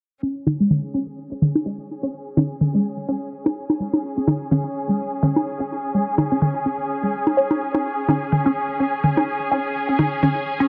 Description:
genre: minimal techno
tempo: 126 BPM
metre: 4/4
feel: swing 57% on 16ths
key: unclear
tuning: A4 = 440 Hz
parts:
  - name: resonant blip pluck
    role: riff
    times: 0.2-10.6 s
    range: G#3 to C#5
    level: -25 LUFS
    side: equal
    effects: phaser, subtle chorus, vintage 12-bit sampler grit, tape echo
  - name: rich studio string section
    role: texture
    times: 0.2-10.7 s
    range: C#4 to G#5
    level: -28 LUFS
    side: equal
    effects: none
  - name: electronic toms and bongos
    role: percussion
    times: 0.5-10.3 s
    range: none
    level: -23 LUFS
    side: equal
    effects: tape echo
room: moderate lush hall reverb, RT60 1.9 s, digital ambience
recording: low-pass filter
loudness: -22 LUFS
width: mono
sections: 0.2-10.7 A section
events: filter sweep 0.2-10.7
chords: 0.2 C#5

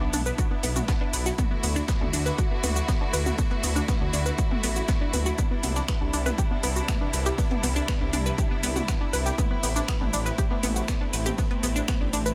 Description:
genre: melodic techno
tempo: 120 BPM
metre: 4/4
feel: straight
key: unclear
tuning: A4 = 440 Hz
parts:
  - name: rich symphonic string section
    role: sustained chords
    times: 0.0-12.3 s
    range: C3 to F#4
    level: -35 LUFS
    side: equal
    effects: sidechain pumping
  - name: unison pluck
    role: arpeggios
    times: 0.0-12.3 s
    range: B3 to B4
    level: -33 LUFS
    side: equal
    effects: sidechain pumping, delay
  - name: dark detuned saw bass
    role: bass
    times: 0.0-12.3 s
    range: A1 to D2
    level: -30 LUFS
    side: equal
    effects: sidechain pumping
  - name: dusty soul sampler-style drum kit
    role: drums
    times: 0.1-12.3 s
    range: hi-hat, snare drum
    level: -44 LUFS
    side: equal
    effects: none
  - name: house drum kit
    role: drums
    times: 0.1-12.3 s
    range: finger snaps, hi-hat, shaker, toms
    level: -34 LUFS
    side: equal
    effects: small room ambience
  - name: electronic kick drum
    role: drums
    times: 0.4-12.0 s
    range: none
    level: -29 LUFS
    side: equal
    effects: small room ambience
room: little or no reverb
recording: none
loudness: -26 LUFS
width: mono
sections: 0.0-12.3 A section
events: none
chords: 0.0 Bm; 1.4 D; 5.4 C; 9.4 Am

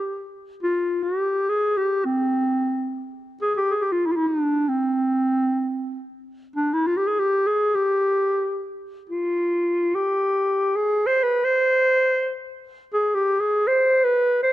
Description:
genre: Turkish makam ensemble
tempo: free time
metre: none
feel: none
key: G makam hicaz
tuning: A4 = 441 Hz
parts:
  - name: warm clarinet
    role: solo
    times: 0.0-14.5 s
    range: C4 to C5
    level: -20 LUFS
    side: equal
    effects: none
room: light reverb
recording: close, detailed microphones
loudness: -20 LUFS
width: side -14 dB against mid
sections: 0.0-14.5 A section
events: none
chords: none

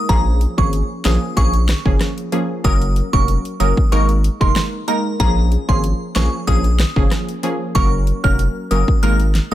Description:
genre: dancehall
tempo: 94 BPM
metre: 4/4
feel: straight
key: Bb minor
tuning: A4 = 442 Hz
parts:
  - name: glassy synth bell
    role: melody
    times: 0.0-9.5 s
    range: Bb5 to F6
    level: -24 LUFS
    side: right 2 dB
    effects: chorus, phaser, ping-pong delay
  - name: glassy wavetable pluck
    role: accompaniment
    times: 0.0-9.5 s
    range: F3 to Bb4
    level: -22 LUFS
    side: equal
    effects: chorus
  - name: saturated sub bass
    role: bass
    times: 0.1-9.5 s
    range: F1 to Bb1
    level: -17 LUFS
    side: equal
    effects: none
  - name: pop drum kit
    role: drums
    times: 0.1-9.5 s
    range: hi-hat, kick drum, rim click, snare drum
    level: -18 LUFS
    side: equal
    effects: none
room: little or no reverb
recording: none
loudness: -15 LUFS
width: side -13 dB against mid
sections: 0.0-9.5 A section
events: none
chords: 0.1 Bbm7; 2.6 Gb; 3.9 Absus2; 5.2 Bbm7; 7.8 Gb; 9.0 Absus2

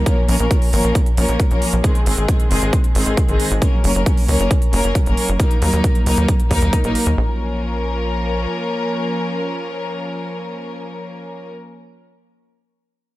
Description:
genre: uplifting trance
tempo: 135 BPM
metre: 4/4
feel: straight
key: Bb minor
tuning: A4 = 442 Hz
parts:
  - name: tight sequencer bass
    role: bass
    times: 0.0-8.5 s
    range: Gb1 to Eb2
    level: -19 LUFS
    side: equal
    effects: sidechain pumping
  - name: warm studio string section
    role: sustained chords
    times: 0.1-11.5 s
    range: Eb3 to Bb4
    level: -21 LUFS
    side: left 1 dB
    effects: sidechain pumping
  - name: electronic hi-hat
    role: drums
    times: 0.1-7.2 s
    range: none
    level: -27 LUFS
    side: right 5 dB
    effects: small room ambience
  - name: electronic kick drum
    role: drums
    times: 0.1-6.8 s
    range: none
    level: -16 LUFS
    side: equal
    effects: small room ambience
room: light reverb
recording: none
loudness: -15 LUFS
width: side -17 dB against mid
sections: 0.0-7.2 A section; 7.2-10.7 B section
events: none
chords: 0.1 Bbm; 1.8 Ab; 3.6 Gb; 5.4 Ebm; 7.2 Bbm

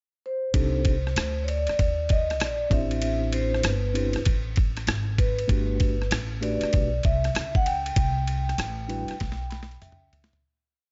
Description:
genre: hip hop, jazz-hop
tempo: 97 BPM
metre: 4/4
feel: swing 65% on 16ths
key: unclear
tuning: A4 = 441 Hz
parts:
  - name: vibraphone with soft mallets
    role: melody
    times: 0.3-10.1 s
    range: B4 to G5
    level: -32 LUFS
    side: equal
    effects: none
  - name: mellow tine electric piano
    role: accompaniment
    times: 0.5-10.4 s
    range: G3 to B5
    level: -34 LUFS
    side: equal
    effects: none
  - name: upright bass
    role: bass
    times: 0.5-10.4 s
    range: G1 to Eb2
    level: -31 LUFS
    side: equal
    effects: none
  - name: boom bap sampler-style drum kit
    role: drums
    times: 0.5-10.5 s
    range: hi-hat, kick drum, ride cymbal, rim click, snare drum, toms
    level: -28 LUFS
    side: equal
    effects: none
room: digital ambience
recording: nothing above 7.7 kHz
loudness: -25 LUFS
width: mono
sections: 0.0-0.5 pickup bar; 0.5-10.4 head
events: fade-out 8.0-10.4; drum fill 9.2-10.4; tine electric piano fill 9.2-10.4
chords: 0.0 N.C.; 0.5 Cm6; 2.7 Am11; 5.5 Gmaj9; 8.0 Cmaj7

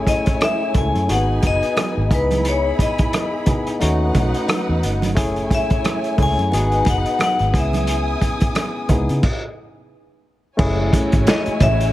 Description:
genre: lush 1970s-style soul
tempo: 88 BPM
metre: 4/4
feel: swing 58% on 16ths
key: F# dorian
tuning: A4 = 439 Hz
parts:
  - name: dark studio string section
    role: second line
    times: 0.0-11.9 s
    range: D#4 to D#6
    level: -27 LUFS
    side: equal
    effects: none
  - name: barky tine electric piano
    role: accompaniment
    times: 0.0-11.9 s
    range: A3 to A4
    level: -24 LUFS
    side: left 1 dB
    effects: none
  - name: vintage muted fingered electric bass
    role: bass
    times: 0.0-11.9 s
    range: F#1 to C#3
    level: -20 LUFS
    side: equal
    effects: none
  - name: vibraphone with medium hard mallets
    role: melody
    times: 0.1-11.9 s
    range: B4 to G#5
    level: -22 LUFS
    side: left 3 dB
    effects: none
  - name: vintage drum kit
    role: drums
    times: 0.1-11.9 s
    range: crash cymbal, hi-hat, kick drum, rim click, snare drum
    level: -20 LUFS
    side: equal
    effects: none
  - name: congas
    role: percussion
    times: 0.1-11.8 s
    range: none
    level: -27 LUFS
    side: right 4 dB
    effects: none
  - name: phased string machine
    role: sustained chords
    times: 10.6-11.9 s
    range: E3 to F#4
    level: -30 LUFS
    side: left 1 dB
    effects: none
room: light reverb, small room ambience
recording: none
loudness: -16 LUFS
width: side -15 dB against mid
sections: 0.0-10.6 A section; 10.6-11.9 B section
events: stop 9.2-10.6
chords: 0.0 F#m9 (rootless); 1.1 G#m7; 2.1 C#m9; 3.8 B7; 5.2 F#m9; 6.5 G#m7; 7.5 C#m9; 9.2 N.C.; 10.6 F#m7

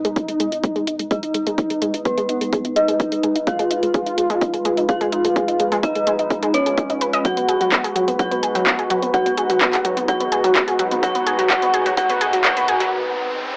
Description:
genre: melodic techno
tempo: 127 BPM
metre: 4/4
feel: straight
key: G# dorian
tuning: A4 = 441 Hz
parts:
  - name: wide unison lead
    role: melody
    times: 0.0-12.9 s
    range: B3 to F#4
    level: -22 LUFS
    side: equal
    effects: lush chorus, sidechain pumping, tape echo
  - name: dark detuned synth bell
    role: second line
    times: 0.0-12.9 s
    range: B4 to F#5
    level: -24 LUFS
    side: equal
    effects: chorus, phaser, sidechain pumping, low-pass filter, cassette tape, tape echo
  - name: deep dark ambient pad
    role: sustained chords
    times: 0.0-13.6 s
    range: G#3 to B4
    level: -27 LUFS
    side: equal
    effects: chorus, built-in reverb, sidechain pumping, cassette tape
  - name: analog pluck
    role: arpeggios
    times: 0.0-12.9 s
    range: F#3 to D#5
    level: -22 LUFS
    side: equal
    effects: chorus, cassette tape, sidechain pumping, tape echo
  - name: house drum kit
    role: drums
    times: 0.0-12.9 s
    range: handclaps, hi-hat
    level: -22 LUFS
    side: equal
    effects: overdrive, cassette tape
  - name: electronic kick drum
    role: drums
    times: 0.2-12.5 s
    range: none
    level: -22 LUFS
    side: equal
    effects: overdrive, high-pass filter on kick, cassette tape
  - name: riser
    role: sound effects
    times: 9.2-13.6 s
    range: none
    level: -31 LUFS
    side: equal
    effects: none
room: wet small room reverb, RT60 0.5 s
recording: home recording on cassette, high-pass filter, small speaker sound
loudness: -16 LUFS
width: side -30 dB against mid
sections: 0.0-13.6 A section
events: build-up 0.0-13.6; filter sweep on synth pluck 0.0-13.6; filter sweep on analog synth lead 0.0-13.6; filter sweep on synth bell 0.0-13.6; riser 9.2-13.6; break 12.9-13.6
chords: 0.0 G#m; 7.2 B6

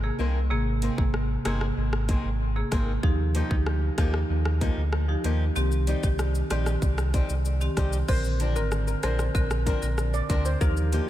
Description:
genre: dancehall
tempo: 95 BPM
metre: 4/4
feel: straight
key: unclear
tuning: A4 = 440 Hz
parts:
  - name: marimba with hard mallets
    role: accompaniment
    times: 0.0-11.0 s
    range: C3 to Bb4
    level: -32 LUFS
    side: right 1 dB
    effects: none
  - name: sub bass with octave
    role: bass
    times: 0.0-11.0 s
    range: G1 to Eb2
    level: -26 LUFS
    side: equal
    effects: none
  - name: fingerpicked swing-style acoustic guitar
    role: arpeggios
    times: 0.2-11.1 s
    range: Eb3 to Bb4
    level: -34 LUFS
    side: left 3 dB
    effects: analog delay
  - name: island pop drum kit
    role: drums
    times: 0.8-11.1 s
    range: crash cymbal, hi-hat, kick drum, rim click, shaker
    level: -29 LUFS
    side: equal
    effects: none
  - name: steel pan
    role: melody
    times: 8.1-10.8 s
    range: Bb4 to D5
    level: -33 LUFS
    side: left 1 dB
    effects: analog delay
room: light reverb, studio reverb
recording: none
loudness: -23 LUFS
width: side -13 dB against mid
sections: 0.0-8.1 A section; 8.1-11.1 B section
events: none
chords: 0.0 Abadd9; 3.0 Ebadd9; 5.6 Cm; 8.1 Bbadd9

